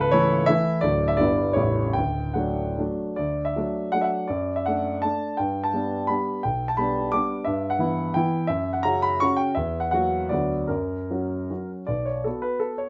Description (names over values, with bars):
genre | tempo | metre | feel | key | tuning
classical, romantic triple-time dance for piano with dotted rhythms | 140-185 BPM | 3/4 | rubato | D major, B minor from 7.5 s | A4 = 440 Hz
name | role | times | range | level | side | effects
warm grand piano | solo | 0.0-12.9 s | A0 to D6 | -24 LUFS | equal | none
room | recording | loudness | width
moderate studio reverb, RT60 0.6 s | nothing above 7.8 kHz | -25 LUFS | mono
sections
0.0-3.2 A section; 3.2-11.9 A section; 11.9-12.9 B section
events
none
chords
0.0 A/C#; 0.8 D; 1.2 Em/G; 1.6 A7; 2.0 D; 4.3 D/F#; 5.4 G; 6.4 G/B; 7.5 Em/G; 8.5 F#5; 9.6 F#7/E; 10.3 Bm/D; 10.7 F#; 11.9 B5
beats
0.12 0.49 | 0.84 1.20 1.58 | 1.96 2.37 2.79 | 3.18 3.56 3.94 | 4.30 4.67 5.04 | 5.39 5.74 6.10 | 6.43 6.78 7.14 | 7.47 7.82 8.18 | 8.51 8.86 9.23 | 9.57 9.93 10.30 | 10.69 11.10 11.50 | 11.88 12.25 12.62